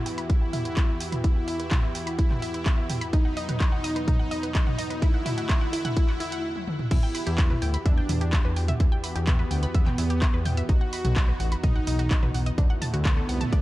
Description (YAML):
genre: melodic techno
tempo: 127 BPM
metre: 4/4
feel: straight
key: E minor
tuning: A4 = 442 Hz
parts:
  - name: soft supersaw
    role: melody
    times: 0.0-13.6 s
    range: B3 to F#4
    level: -32 LUFS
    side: equal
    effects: sidechain pumping, digital delay
  - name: warm analog pad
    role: sustained chords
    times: 0.0-13.6 s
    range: B2 to G4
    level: -37 LUFS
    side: equal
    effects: chorus, sidechain pumping
  - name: analog drone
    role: drone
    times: 0.1-13.6 s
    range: E2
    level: -40 LUFS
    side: equal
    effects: none
  - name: wide unison pluck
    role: arpeggios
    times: 0.1-13.6 s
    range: D4 to B5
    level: -36 LUFS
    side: equal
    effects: cassette tape, sidechain pumping, dub echo
  - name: punchy analog drum machine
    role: drums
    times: 0.1-13.6 s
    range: crash cymbal, handclaps, hi-hat, toms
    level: -32 LUFS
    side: right 1 dB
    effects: none
  - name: electronic kick drum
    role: drums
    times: 0.3-13.6 s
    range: none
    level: -22 LUFS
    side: equal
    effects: none
  - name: fat analog bass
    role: bass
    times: 6.9-13.6 s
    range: A1 to E2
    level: -26 LUFS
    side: equal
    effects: sidechain pumping
room: little or no reverb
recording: dark, warm production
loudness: -22 LUFS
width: side -17 dB against mid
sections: 0.0-6.9 A section; 6.9-13.6 B section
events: build-up 0.0-6.9; filter sweep on synth arpeggio sound 0.0-6.9; stop 6.4-6.9; drum fill 6.6-6.9; drop 6.9-13.6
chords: 0.0 Em; 3.1 B; 5.0 D; 6.9 Em; 10.7 B; 12.6 D